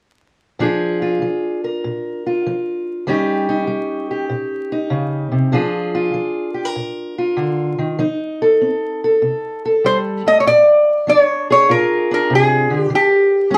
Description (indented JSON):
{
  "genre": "acoustic country blues, solo or duo",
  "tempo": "97 BPM",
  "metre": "4/4",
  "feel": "swing 67% on 8ths",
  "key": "Bb mixolydian",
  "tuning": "A4 = 443 Hz",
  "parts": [
    { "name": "fingerpicked steel-string acoustic guitar", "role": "accompaniment", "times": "0.6-13.6 s", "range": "Bb2 to Bb4", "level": "-20 LUFS", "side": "equal", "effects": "none" },
    { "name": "lap resonator guitar", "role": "melody", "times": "9.9-13.6 s", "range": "G4 to Eb5", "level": "-14 LUFS", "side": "equal", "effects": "none" }
  ],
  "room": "moderate studio reverb, RT60 0.6 s",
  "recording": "vinyl crackle",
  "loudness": "-17 LUFS",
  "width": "mono",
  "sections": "0.6-10.5 A section; 10.5-13.6 B section",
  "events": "none",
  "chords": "0.6 Bb7; 3.1 Eb7; 5.5 Bb7; 8.0 F7; 10.5 Bb7; 12.9 Eb"
}